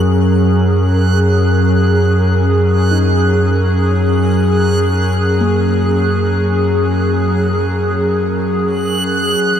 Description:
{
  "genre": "ambient",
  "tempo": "free time",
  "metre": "none",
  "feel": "none",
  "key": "F# major",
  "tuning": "A4 = 438 Hz",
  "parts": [
    { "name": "airy breathy pad", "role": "sustained chords", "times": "0.0-9.6 s", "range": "E3 to A#4", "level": "-15 LUFS", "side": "equal", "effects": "chorus" },
    { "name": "warm sub bass", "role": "bass", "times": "0.0-9.6 s", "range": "E2 to F#2", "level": "-15 LUFS", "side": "equal", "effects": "none" },
    { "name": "backwards swelling texture", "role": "texture", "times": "0.0-9.6 s", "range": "F#6", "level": "-23 LUFS", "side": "right 3 dB", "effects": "built-in reverb" },
    { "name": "kalimba", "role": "arpeggios", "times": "2.9-7.3 s", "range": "A#3 to D#4", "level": "-27 LUFS", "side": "left 2 dB", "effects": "none" }
  ],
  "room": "wet huge ambient reverb, RT60 7.6 s",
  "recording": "none",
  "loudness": "-12 LUFS",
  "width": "side -9 dB against mid",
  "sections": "0.0-9.6 A section",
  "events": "fade-in on synth texture 0.0-9.6",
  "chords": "0.0 F#69",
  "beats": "free time"
}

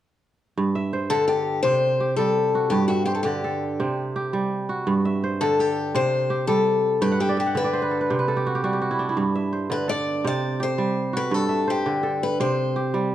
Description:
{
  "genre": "west african traditional",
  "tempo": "112 BPM (dotted quarters)",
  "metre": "12/8",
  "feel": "straight",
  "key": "G major",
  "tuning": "A4 = 440 Hz",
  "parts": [
    { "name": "kora", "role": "arpeggios", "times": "0.6-13.1 s", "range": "G2 to G5", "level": "-23 LUFS", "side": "right 3 dB", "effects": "none" },
    { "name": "picked old ladder-braced acoustic guitar", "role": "melody", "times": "1.1-13.1 s", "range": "F#4 to D5", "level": "-23 LUFS", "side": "left 4 dB", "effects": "none" }
  ],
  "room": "moderate recital hall reverb, RT60 1.6 s",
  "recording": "dark, warm production",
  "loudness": "-21 LUFS",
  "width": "side -12 dB against mid",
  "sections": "0.6-13.1 A section",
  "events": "kora fill 7.0-9.2",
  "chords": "0.6 G5; 1.6 C5; 2.7 G5; 3.8 C5; 4.9 G5; 5.9 C5; 7.0 G; 8.1 C5; 9.2 G5; 10.2 C5; 11.3 G5; 12.4 C5",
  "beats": "| 0.57 1.10 1.64 2.18 | 2.72 3.25 3.79 4.33 | 4.86 5.40 5.94 6.47 | 7.01 7.55 8.09 8.62 | 9.16 9.70 10.24 10.78 | 11.31 11.85 12.39 12.93"
}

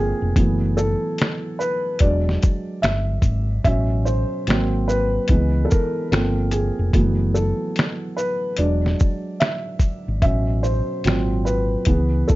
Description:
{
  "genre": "lo-fi hip hop",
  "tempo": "73 BPM",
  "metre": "4/4",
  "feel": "swing 65% on 16ths",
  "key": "unclear",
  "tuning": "A4 = 440 Hz",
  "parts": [
    { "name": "felt-muted upright piano", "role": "accompaniment", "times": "0.0-12.4 s", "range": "Bb2 to E5", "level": "-22 LUFS", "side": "right 1 dB", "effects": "cassette tape, low-pass filter" },
    { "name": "hollow-body short-scale fingered electric bass", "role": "bass", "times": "0.0-12.2 s", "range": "E1 to C#2", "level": "-21 LUFS", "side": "equal", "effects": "none" },
    { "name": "lo-fi sampler-style drum kit", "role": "drums", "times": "0.4-12.4 s", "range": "finger snaps, hi-hat, kick drum, shaker, snare drum", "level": "-19 LUFS", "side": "equal", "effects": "none" }
  ],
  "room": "light reverb",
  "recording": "dark, warm production, nothing above 7.6 kHz",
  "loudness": "-18 LUFS",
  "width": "side -18 dB against mid",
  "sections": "0.0-12.4 A section",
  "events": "felt piano solo 0.0-12.4",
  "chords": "0.4 F#m7; 2.0 E7; 3.6 A6; 4.5 G#7; 5.3 C#m7; 6.1 Gm11; 6.9 F#m7; 8.6 E7; 10.2 A6; 11.0 G#7",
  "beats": "| 0.36 1.18 2.00 2.83 | 3.65 4.47 5.29 6.11 | 6.93 7.76 8.58 9.40 | 10.22 11.04 11.87"
}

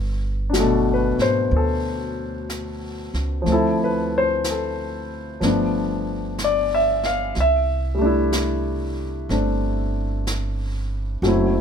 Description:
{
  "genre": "jazz ballad",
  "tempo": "62 BPM",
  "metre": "4/4",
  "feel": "swing 66% on 8ths",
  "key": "G major",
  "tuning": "A4 = 441 Hz",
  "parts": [
    { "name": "upright bass", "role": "bass", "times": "0.0-11.6 s", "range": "F#1 to D2", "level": "-25 LUFS", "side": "right 1 dB", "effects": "none" },
    { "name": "warm grand piano", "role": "accompaniment", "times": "0.5-11.6 s", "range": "B2 to F5", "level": "-21 LUFS", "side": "left 2 dB", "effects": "none" },
    { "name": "jazz brush drum kit", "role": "drums", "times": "0.5-11.6 s", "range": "brushed snare drum, hi-hat, snare drum", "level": "-32 LUFS", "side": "right 2 dB", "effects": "none" }
  ],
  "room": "little or no reverb",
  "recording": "minimal, uncompressed stereo recording",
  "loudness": "-19 LUFS",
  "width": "side -7 dB against mid",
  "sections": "0.0-11.6 A section",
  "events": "none",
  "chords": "0.0 Gmaj9; 3.5 Dm9; 5.4 G7; 7.4 C6",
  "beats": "0.54 1.51 2.49 | 3.46 4.43 5.41 6.38 | 7.35 8.32 9.29 10.26 | 11.23"
}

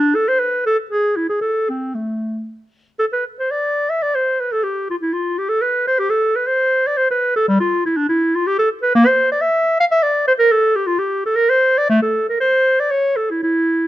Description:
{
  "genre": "classical, baroque-style fantasia for unaccompanied clarinet",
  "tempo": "110-126 BPM",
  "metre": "3/4",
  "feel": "rubato",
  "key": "A minor",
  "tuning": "A4 = 440 Hz",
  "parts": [
    { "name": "mellow clarinet", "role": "solo", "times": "0.0-13.9 s", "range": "G3 to F5", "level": "-15 LUFS", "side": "equal", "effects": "none" }
  ],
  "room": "light reverb",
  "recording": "close, detailed microphones",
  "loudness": "-15 LUFS",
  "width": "side -14 dB against mid",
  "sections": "0.0-3.0 A section; 3.0-13.9 B section",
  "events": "none",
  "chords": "none",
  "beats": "0.41 0.92 | 1.44 1.96 2.49 | 3.01 3.52 4.02 | 4.52 5.02 5.50 | 5.99 6.48 6.97 | 7.48 7.98 8.46 | 8.95 9.43 9.91 | 10.39 10.87 11.37 | 11.89 12.40 12.90 | 13.43"
}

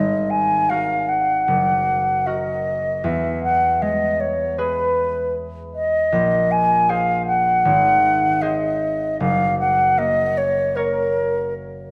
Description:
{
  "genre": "classical, impressionist duo for flute and harp",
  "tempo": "77 BPM",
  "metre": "4/4",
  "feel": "rubato",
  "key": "unclear",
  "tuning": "A4 = 444 Hz",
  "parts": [
    { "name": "mellow concert flute", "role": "melody", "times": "0.0-11.5 s", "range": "A#4 to G#5", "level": "-20 LUFS", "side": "equal", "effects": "none" },
    { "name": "concert harp", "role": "accompaniment", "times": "0.0-11.9 s", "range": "F#1 to C#5", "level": "-27 LUFS", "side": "equal", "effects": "none" }
  ],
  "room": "moderate scoring stage reverb, RT60 2.0 s",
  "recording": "none",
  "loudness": "-19 LUFS",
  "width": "mono",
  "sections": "0.0-11.9 A section",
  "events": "none",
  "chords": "0.0 G#sus2; 1.5 F#; 3.0 E; 6.1 A#sus2; 7.7 G#7; 9.2 F#",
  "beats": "0.70 1.48 2.27 | 3.05 3.82 4.58 5.35 | 6.13 6.89 7.66 8.42 | 9.21 9.98 10.76 11.54"
}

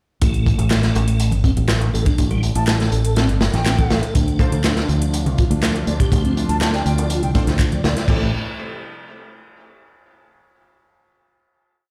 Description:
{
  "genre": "breakbeat, breaks",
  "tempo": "122 BPM",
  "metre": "4/4",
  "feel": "straight",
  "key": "A minor",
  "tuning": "A4 = 441 Hz",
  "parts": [
    { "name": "tonewheel organ", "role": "riff", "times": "0.2-8.3 s", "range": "G3 to D5", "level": "-29 LUFS", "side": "equal", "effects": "overdrive, chorus vibrato, fast rotary speaker, digital delay" },
    { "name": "fingered electric bass", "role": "bass", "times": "0.2-8.3 s", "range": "G1 to D2", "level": "-22 LUFS", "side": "equal", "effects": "none" },
    { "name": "crunchy breakbeat drum kit", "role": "drums", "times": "0.2-8.2 s", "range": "crash cymbal, hi-hat, kick drum, snare drum", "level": "-22 LUFS", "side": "equal", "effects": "none" },
    { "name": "garage drum kit", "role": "drums", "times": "0.2-8.1 s", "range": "handclaps, hi-hat", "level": "-32 LUFS", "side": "equal", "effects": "overdrive" },
    { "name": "congas and bongos", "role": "percussion", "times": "0.2-7.9 s", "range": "none", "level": "-31 LUFS", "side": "equal", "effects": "none" },
    { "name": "mellow wooden flute", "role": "melody", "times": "2.6-7.4 s", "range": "G5 to A5", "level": "-32 LUFS", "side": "equal", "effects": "old record sound, digital delay" },
    { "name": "phased analog pad", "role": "sustained chords", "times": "4.2-8.3 s", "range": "C3 to G4", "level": "-32 LUFS", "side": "equal", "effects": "phaser, chorus, vintage 12-bit sampler grit, sidechain pumping" },
    { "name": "orchestra-hit-like synth stab", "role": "stabs", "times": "4.4-8.3 s", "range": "A3 to C5", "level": "-33 LUFS", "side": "equal", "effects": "built-in reverb, digital delay" }
  ],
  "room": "small room ambience",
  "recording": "played on a big sound system in a bare room, stone room reverb",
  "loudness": "-18 LUFS",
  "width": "mono",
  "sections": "0.2-8.1 drop; 8.1-10.1 final chord",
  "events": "drop 0.2-8.1",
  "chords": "0.2 Am7; 4.2 Dm7; 8.1 Am7",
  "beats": "| 0.22 0.71 1.20 1.69 | 2.19 2.68 3.17 3.66 | 4.15 4.64 5.14 5.63 | 6.12 6.61 7.10 7.59 | 8.09"
}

